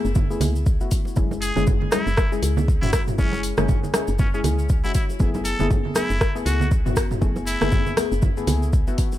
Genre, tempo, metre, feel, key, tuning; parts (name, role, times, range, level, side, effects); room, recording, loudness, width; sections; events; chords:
afro house; 119 BPM; 4/4; swing 58% on 16ths; F# minor; A4 = 442 Hz
deep mellow chord stab; stabs; 0.0-9.2 s; G#3 to G#4; -28 LUFS; left 4 dB; chorus, sidechain pumping, ping-pong delay
woody FM bass; bass; 0.1-9.0 s; F#1 to C#2; -25 LUFS; equal; sidechain pumping
cabasa; percussion; 0.1-9.2 s; -39 LUFS; left 2 dB
deep house drum kit; drums; 0.2-9.1 s; hi-hat, rim click, toms; -26 LUFS; equal; overdrive
electronic kick drum; drums; 0.2-9.1 s; -21 LUFS; equal; overdrive
congas; percussion; 0.2-9.2 s; -29 LUFS; right 5 dB
trumpet with straight mute; melody; 1.4-8.0 s; C#4 to A4; -30 LUFS; equal; tape echo
little or no reverb; -19 LUFS; side -14 dB against mid
0.0-9.2 A section
0.0 F#m11; 1.2 C#m/F#; 5.2 F#m11